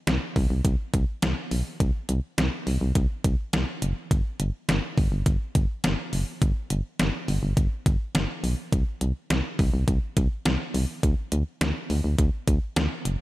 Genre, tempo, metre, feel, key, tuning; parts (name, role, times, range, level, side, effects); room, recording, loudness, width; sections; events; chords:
synth-pop; 104 BPM; 4/4; straight; G major; A4 = 440 Hz
solid FM bass; bass; 0.1-13.2 s; F#1 to D2; -25 LUFS; equal
detuned 8-bit digital drum machine; drums; 0.1-13.2 s; hi-hat, kick drum, snare drum; -25 LUFS; equal; overdrive
light reverb; -23 LUFS; side -18 dB against mid
0.0-13.2 A section